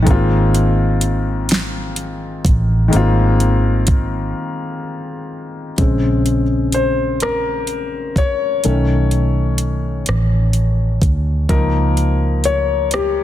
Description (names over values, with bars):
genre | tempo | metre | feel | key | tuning
slow six-eight R&B | 42 BPM (dotted quarters) | 6/8 | straight | Ab major | A4 = 444 Hz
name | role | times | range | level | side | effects
warm concert grand piano | accompaniment | 0.0-13.2 s | Db3 to Db5 | -19 LUFS | left 3 dB | none
vintage muted fingered electric bass | bass | 0.0-13.2 s | Ab1 to D2 | -17 LUFS | right 1 dB | none
smooth R&B drum kit | drums | 0.1-13.2 s | hi-hat, kick drum, rim click, snare drum | -18 LUFS | right 1 dB | none
room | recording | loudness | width
small room ambience | dense, heavily limited modern master | -14 LUFS | side -12 dB against mid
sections
0.0-5.8 A section; 5.8-13.2 B section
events
break 4.3-5.8; grand piano solo 5.8-13.2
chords
0.1 Ab69; 5.8 Bbm9; 8.6 B9; 11.5 Db69